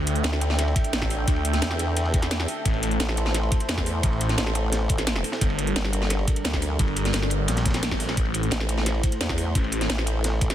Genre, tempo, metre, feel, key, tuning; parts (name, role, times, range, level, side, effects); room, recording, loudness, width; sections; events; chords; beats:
dark technical drum and bass; 174 BPM; 4/4; straight; A phrygian; A4 = 440 Hz
dark analog pad; sustained chords; 0.0-10.5 s; G3 to G5; -31 LUFS; right 1 dB; chorus, sidechain pumping
phased detuned saw bass; bass; 0.0-9.9 s; G1 to D2; -25 LUFS; equal; phaser, overdrive, sidechain pumping
crunchy breakbeat drum kit; drums; 0.1-10.5 s; ride cymbal, snare drum; -35 LUFS; equal; high-pass filter on cymbals, high-pass filter on snare, high-pass filter on room
drum and bass drum kit; drums; 0.1-10.5 s; hi-hat, snare drum; -28 LUFS; equal
formant-sweep wobble bass; bass; 0.2-10.5 s; G1 to E2; -26 LUFS; equal; chorus
electronic kick drum; drums; 0.8-10.5 s; -24 LUFS; equal
swell; sound effects; 7.6-8.2 s; -38 LUFS; left 5 dB
light reverb, digital ambience; dense, heavily limited modern master; -22 LUFS; side -11 dB against mid
0.0-10.5 A section
0.0 Dsus4; 2.7 Am; 5.4 Gm; 8.2 Am
0.24 0.59 0.93 | 1.28 1.62 1.97 2.31 | 2.65 3.00 3.35 3.69 | 4.04 4.38 4.72 5.07 | 5.41 5.76 6.10 6.45 | 6.79 7.14 7.48 7.83 | 8.17 8.52 8.86 9.21 | 9.55 9.90 10.24